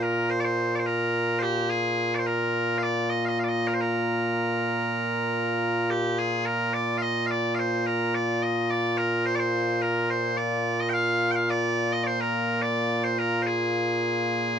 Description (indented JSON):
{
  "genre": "scottish traditional, Scottish pipe music",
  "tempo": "107 BPM",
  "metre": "4/4",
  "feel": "straight",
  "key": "Bb mixolydian",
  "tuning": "A4 = 440 Hz",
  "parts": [
    { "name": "loud bright bagpipes", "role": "solo", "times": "0.0-14.6 s", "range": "Bb2 to G5", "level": "-23 LUFS", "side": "equal", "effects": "none" }
  ],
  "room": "light reverb",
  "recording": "dry, close 1970s-style studio recording",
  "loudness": "-23 LUFS",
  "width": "side -8 dB against mid",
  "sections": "0.0-5.9 A section; 5.9-14.6 A section",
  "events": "none",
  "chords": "none"
}